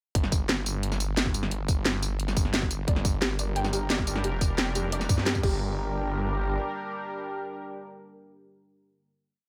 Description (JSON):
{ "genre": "dark technical drum and bass", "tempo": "176 BPM", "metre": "4/4", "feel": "straight", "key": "G minor", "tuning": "A4 = 440 Hz", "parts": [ { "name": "snarling distorted saw bass", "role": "bass", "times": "0.1-6.6 s", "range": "F1 to G2", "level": "-32 LUFS", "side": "equal", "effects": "distortion, overdrive" }, { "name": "drum and bass drum kit", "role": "drums", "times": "0.1-5.5 s", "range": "crash cymbal, hi-hat, snare drum, tambourine", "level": "-31 LUFS", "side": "equal", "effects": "none" }, { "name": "electronic kick drum", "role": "drums", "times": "0.1-5.5 s", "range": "none", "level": "-29 LUFS", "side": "equal", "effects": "none" }, { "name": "sweeping resonant pad", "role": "sustained chords", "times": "3.4-9.1 s", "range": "G3 to Bb4", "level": "-36 LUFS", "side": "equal", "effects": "chorus, sidechain pumping" }, { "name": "soft round pluck", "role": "arpeggios", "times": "2.9-5.8 s", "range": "G4 to G5", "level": "-37 LUFS", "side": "equal", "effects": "ensemble chorus, sidechain pumping, tape echo" } ], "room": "digital ambience", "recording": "none", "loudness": "-28 LUFS", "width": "mono", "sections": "0.1-5.6 drop; 5.6-8.3 final hit", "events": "drop 0.1-5.6", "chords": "0.1 Gm" }